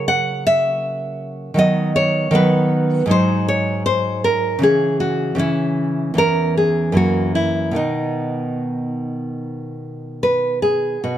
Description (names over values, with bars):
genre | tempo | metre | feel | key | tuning
classical, baroque-style dance for nylon-string guitar | 72-80 BPM | 4/4 | rubato | B major | A4 = 440 Hz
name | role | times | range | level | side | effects
nylon-string guitar | solo | 0.0-11.2 s | E2 to F#5 | -16 LUFS | equal | none
room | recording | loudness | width
light reverb | close, detailed microphones | -16 LUFS | side -11 dB against mid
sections
0.0-11.0 A section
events
none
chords
0.0 F#7/C#; 1.6 B/D#; 3.1 G#5; 4.6 C#m; 6.2 C#m/E; 7.0 F#7; 7.8 B